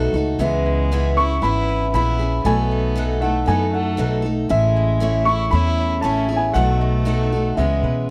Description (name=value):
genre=acoustic folk duo or small band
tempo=117 BPM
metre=4/4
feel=straight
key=unclear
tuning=A4 = 440 Hz
part: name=picked steel-string acoustic guitar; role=accompaniment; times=0.0-8.1 s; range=B2 to A4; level=-26 LUFS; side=equal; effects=none
part: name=mandolin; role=arpeggios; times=0.0-8.1 s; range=G#3 to F#5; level=-30 LUFS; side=equal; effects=none
part: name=upright bass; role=bass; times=0.0-8.1 s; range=G#1 to B2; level=-23 LUFS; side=equal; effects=none
part: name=dark upright piano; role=melody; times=0.4-8.1 s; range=E5 to C#6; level=-25 LUFS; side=equal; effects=none
part: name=warm fiddle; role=second line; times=0.4-8.1 s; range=G#3 to E4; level=-32 LUFS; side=equal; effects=none
room=light reverb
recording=dry, close 1970s-style studio recording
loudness=-19 LUFS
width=mono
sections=0.0-8.1 A section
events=none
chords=0.4 C#m7; 2.5 B7; 4.5 Amaj7; 6.6 B7; 7.6 C#m7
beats=| 0.40 0.92 1.43 1.94 | 2.45 2.97 3.48 3.99 | 4.50 5.02 5.53 6.04 | 6.56 7.07 7.58 8.10